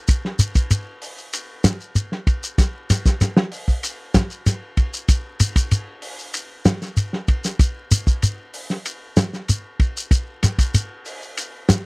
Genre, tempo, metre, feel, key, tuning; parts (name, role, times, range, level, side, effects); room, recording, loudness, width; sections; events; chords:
afrobeat; 96 BPM; 4/4; straight
warm soul drum kit; drums; 0.1-11.8 s; hi-hat, kick drum, ride cymbal, snare drum; -19 LUFS; equal
shekere; percussion; 0.1-11.8 s; -19 LUFS; equal
light reverb; dry, close 1970s-style studio recording; -18 LUFS; side -27 dB against mid
0.0-11.9 A section